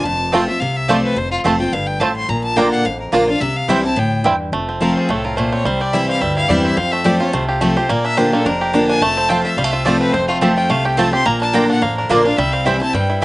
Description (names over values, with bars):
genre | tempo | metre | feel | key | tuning
bluegrass | 214 BPM | 4/4 | swing 54% on 8ths | unclear | A4 = 440 Hz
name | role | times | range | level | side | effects
clear fiddle | melody | 0.0-13.2 s | F4 to C6 | -21 LUFS | left 2 dB | none
picked steel-string acoustic guitar | accompaniment | 0.0-13.2 s | F2 to F4 | -18 LUFS | left 1 dB | none
upright bass | bass | 0.0-13.2 s | F1 to G2 | -25 LUFS | equal | none
bluegrass banjo | melody | 0.3-13.2 s | G3 to G4 | -20 LUFS | right 2 dB | slapback echo
mandolin | stabs | 0.3-4.4, 9.3-13.2 s | Bb3 to Bb5 | -19 LUFS | right 3 dB | slapback echo
room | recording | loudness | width
little or no reverb | recorded outdoors, with no room sound, nothing above 10.3 kHz | -14 LUFS | side -19 dB against mid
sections
0.0-4.5 A section; 4.5-13.2 A section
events
none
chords
0.0 F; 2.3 Bb; 3.4 C; 4.5 F; 5.7 C; 6.8 F; 7.9 Bb; 9.0 F; 11.3 Bb; 12.4 C